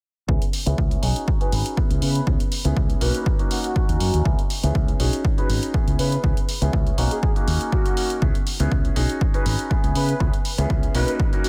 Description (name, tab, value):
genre	filtered disco house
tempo	121 BPM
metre	4/4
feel	swing 54% on 16ths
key	C# dorian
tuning	A4 = 440 Hz
part	bright baby grand piano	accompaniment	0.3-11.5 s	A#3 to G#4	-30 LUFS	equal	phaser, sidechain pumping, low-pass filter
part	modern bright fingered electric bass	bass	0.3-11.0 s	G#1 to C#3	-24 LUFS	equal	sidechain pumping, low-pass filter
part	electronic kick drum	drums	0.3-11.3 s	none	-24 LUFS	equal	none
part	electronic hi-hat	drums	0.4-11.5 s	none	-33 LUFS	equal	sidechain pumping on hats
part	analog synth brass	melody	1.4-11.5 s	F#4 to B4	-34 LUFS	equal	chorus, sidechain pumping, low-pass filter, tape echo
room	light reverb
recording	none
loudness	-22 LUFS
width	mono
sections	0.3-11.5 A section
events	filter sweep 0.3-11.5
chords	0.3 C#m7; 1.3 G#7sus4; 2.0 C#m7; 3.3 D#m7; 4.3 C#m7; 5.2 G#7sus4; 6.0 C#m7; 7.2 D#m7; 8.2 C#m7; 9.2 G#7sus4; 10.0 C#m7